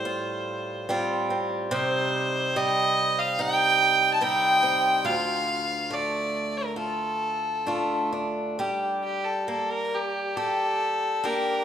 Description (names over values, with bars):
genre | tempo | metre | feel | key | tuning
celtic folk, Celtic slow air | 64-73 BPM | 4/4 | rubato | G minor | A4 = 440 Hz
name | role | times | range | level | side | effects
clear fiddle | melody | 0.0-11.6 s | G4 to A5 | -24 LUFS | equal | none
picked swing-style acoustic guitar | accompaniment | 0.0-11.6 s | D2 to G4 | -28 LUFS | right 1 dB | none
room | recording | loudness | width
moderate scoring stage reverb, RT60 2.0 s | minimal, uncompressed stereo recording | -23 LUFS | side -9 dB against mid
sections
0.0-11.6 A section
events
none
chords
0.0 Fadd9/A; 1.7 Cm; 5.0 Dm; 8.6 Gm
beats
0.03 0.87 | 1.70 2.54 3.37 4.20 | 5.04 5.89 6.76 7.66 | 8.59 9.49 10.37 11.23